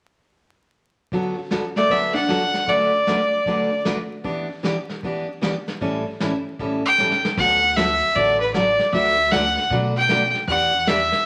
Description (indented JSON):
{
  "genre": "country, western swing",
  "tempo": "154 BPM",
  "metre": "4/4",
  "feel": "swing 64% on 8ths",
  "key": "D major",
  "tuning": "A4 = 438 Hz",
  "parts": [
    { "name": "picked steel-string acoustic guitar", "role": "accompaniment", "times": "1.1-11.0 s", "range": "A2 to B4", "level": "-27 LUFS", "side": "equal", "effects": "none" },
    { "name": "vintage brush drum kit", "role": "drums", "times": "1.1-11.3 s", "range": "brushed snare drum, crash cymbal, hi-hat, kick drum, snare drum", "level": "-30 LUFS", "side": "equal", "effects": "none" },
    { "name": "clear fiddle", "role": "melody", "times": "1.8-3.9, 6.9-11.3 s", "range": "B4 to G5", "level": "-20 LUFS", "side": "equal", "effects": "none" },
    { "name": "vintage hollow-body jazz guitar", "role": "second line", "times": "1.8-3.8 s", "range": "A3 to D4", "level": "-30 LUFS", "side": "equal", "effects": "none" },
    { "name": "upright bass", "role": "bass", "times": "7.4-11.1 s", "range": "A1 to B2", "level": "-32 LUFS", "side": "equal", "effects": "none" }
  ],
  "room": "wet large studio reverb, RT60 1.1 s",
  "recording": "vinyl crackle",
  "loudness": "-20 LUFS",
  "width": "mono",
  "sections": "1.1-7.4 A section; 7.4-11.3 B section",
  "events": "drum fill 7.0-7.4",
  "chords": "1.1 D6; 4.2 Em7; 5.8 A7; 7.4 D6; 8.9 Bm7/D; 10.5 Em7",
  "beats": "| 1.12 1.51 1.90 2.29 | 2.69 3.08 3.47 3.86 | 4.25 4.64 5.03 5.42 | 5.81 6.20 6.59 6.98 | 7.37 7.76 8.15 8.54 | 8.93 9.32 9.71 10.10 | 10.48 10.87"
}